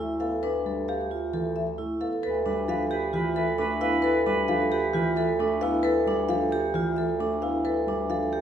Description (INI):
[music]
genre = classical, minimalist pattern music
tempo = 133 BPM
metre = 4/4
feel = straight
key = D dorian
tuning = A4 = 442 Hz
[part]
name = marimba with medium mallets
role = melody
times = 0.0-8.4 s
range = G4 to F5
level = -30 LUFS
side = left 5 dB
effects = none
[part]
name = dark grand piano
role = accompaniment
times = 0.0-8.4 s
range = E3 to B3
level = -32 LUFS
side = left 1 dB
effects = none
[part]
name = vibraphone with medium hard mallets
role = arpeggios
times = 0.0-8.4 s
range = D4 to A4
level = -27 LUFS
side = right 3 dB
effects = none
[part]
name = bright bass clarinet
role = bass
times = 0.0-8.4 s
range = D2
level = -32 LUFS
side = right 1 dB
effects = none
[part]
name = warm oboe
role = second line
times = 2.2-5.6 s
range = B4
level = -31 LUFS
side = right 3 dB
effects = none
[sound]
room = wet recital hall reverb, RT60 1.2 s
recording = recorded in a church or concert hall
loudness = -24 LUFS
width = side -9 dB against mid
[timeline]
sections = 0.0-2.2 A section; 2.2-8.4 A section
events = none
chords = 0.0 Dm69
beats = | 0.43 0.88 1.33 1.78 | 2.23 2.69 3.14 3.59 | 4.04 4.49 4.94 5.39 | 5.84 6.29 6.75 7.20 | 7.65 8.10